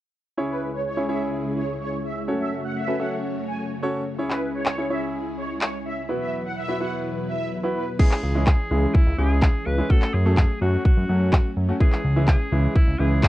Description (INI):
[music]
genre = dance-pop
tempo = 126 BPM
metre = 4/4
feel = straight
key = C# minor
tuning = A4 = 441 Hz
[part]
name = bright concert grand piano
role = accompaniment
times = 0.4-13.3 s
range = E3 to E5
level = -27 LUFS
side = equal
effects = sidechain pumping
[part]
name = string machine, violas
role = sustained chords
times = 0.4-13.3 s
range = C#2 to C#5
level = -31 LUFS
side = equal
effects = ensemble chorus, sidechain pumping
[part]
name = filtered supersaw swell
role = melody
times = 0.5-7.8 s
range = B4 to G#5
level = -31 LUFS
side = right 1 dB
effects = phaser, sidechain pumping, analog delay
[part]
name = house drum kit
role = drums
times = 4.3-13.3 s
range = crash cymbal, handclaps, kick drum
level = -18 LUFS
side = equal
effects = vintage 12-bit sampler grit
[part]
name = edgy alto saxophone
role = melody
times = 8.0-13.3 s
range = E4 to B4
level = -30 LUFS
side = equal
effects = none
[part]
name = fat analog bass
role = bass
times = 8.2-13.3 s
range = C#2 to F#2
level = -21 LUFS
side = equal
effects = sidechain pumping
[sound]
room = light reverb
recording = dark, warm production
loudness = -20 LUFS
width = side -16 dB against mid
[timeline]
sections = 0.4-8.0 A section; 8.0-13.3 B section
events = none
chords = 0.4 C#m; 2.3 F#m; 4.2 C#m; 6.1 Esus2; 8.0 C#m; 9.9 F#m; 11.8 C#m